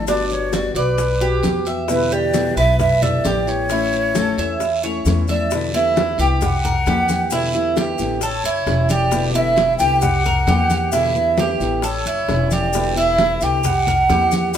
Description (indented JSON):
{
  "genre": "latin, Cuban son and guajira",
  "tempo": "133 BPM",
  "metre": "4/4",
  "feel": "straight",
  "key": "unclear",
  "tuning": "A4 = 444 Hz",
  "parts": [
    { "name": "breathy hollow jazz flute", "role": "melody", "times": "0.0-14.6 s", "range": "B4 to G5", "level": "-20 LUFS", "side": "right 1 dB", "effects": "none" },
    { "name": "nylon-string guitar", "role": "accompaniment", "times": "0.0-14.6 s", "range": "B2 to F#4", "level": "-24 LUFS", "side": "left 3 dB", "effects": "none" },
    { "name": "Cuban tres", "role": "arpeggios", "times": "0.0-14.6 s", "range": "D4 to E5", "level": "-23 LUFS", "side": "right 4 dB", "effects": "none" },
    { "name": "upright bass", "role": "bass", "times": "0.0-14.6 s", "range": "E1 to E2", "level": "-22 LUFS", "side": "equal", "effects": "none" },
    { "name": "bongos", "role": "percussion", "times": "0.1-14.6 s", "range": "none", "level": "-28 LUFS", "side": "left 5 dB", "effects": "none" },
    { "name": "congas", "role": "percussion", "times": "0.1-14.6 s", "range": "none", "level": "-25 LUFS", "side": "left 1 dB", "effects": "none" },
    { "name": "guiro", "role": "percussion", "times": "0.1-14.6 s", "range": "none", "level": "-34 LUFS", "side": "right 3 dB", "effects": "none" },
    { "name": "maracas", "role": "percussion", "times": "0.1-14.6 s", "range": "none", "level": "-33 LUFS", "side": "left 4 dB", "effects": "none" }
  ],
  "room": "moderate stone room reverb, RT60 1.0 s",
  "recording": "band playing live in one room",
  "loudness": "-16 LUFS",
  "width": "side -9 dB against mid",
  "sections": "0.0-5.5 A section; 5.5-14.6 B section",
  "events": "none",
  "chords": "0.1 Gmaj7; 1.9 Em7; 3.7 A; 5.5 Em7; 6.4 C7; 7.3 Em7; 8.2 A7; 9.1 Em7; 10.0 C7; 10.9 Em7; 11.8 A7; 12.7 Em7; 13.6 C7"
}